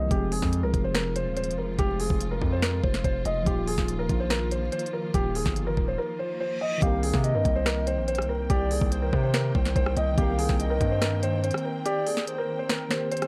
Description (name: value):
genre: hip hop, trap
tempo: 143 BPM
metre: 4/4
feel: half-time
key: C minor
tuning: A4 = 442 Hz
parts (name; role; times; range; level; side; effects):
- felt-muted upright piano; melody; 0.0-13.3 s; G4 to Eb5; -32 LUFS; equal; tape echo
- tine electric piano; accompaniment; 0.0-13.3 s; Eb3 to Bb4; -37 LUFS; equal; none
- hard-hitting 808-style bass; bass; 0.0-11.5 s; Eb1 to C3; -30 LUFS; equal; none
- warm symphonic string section; sustained chords; 0.1-13.3 s; C3 to G5; -40 LUFS; equal; none
- trap drum kit; drums; 0.1-13.3 s; finger snaps, hi-hat, kick drum, rim click, snare drum; -30 LUFS; equal; none
- reverse cymbal; sound effects; 6.3-6.8 s; none; -40 LUFS; equal; none
- hollow clarinet-like synth lead; second line; 6.8-13.1 s; Bb4 to F5; -34 LUFS; equal; chorus, tape echo
room: little or no reverb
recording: dry, gritty hardware recording, vinyl crackle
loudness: -26 LUFS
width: mono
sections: 0.0-6.8 A section; 6.8-13.3 B section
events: break 6.0-6.8, 11.9-13.3; reverse cymbal 6.3-6.8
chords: 0.1 Fm; 3.5 Ebsus2; 6.8 Cm7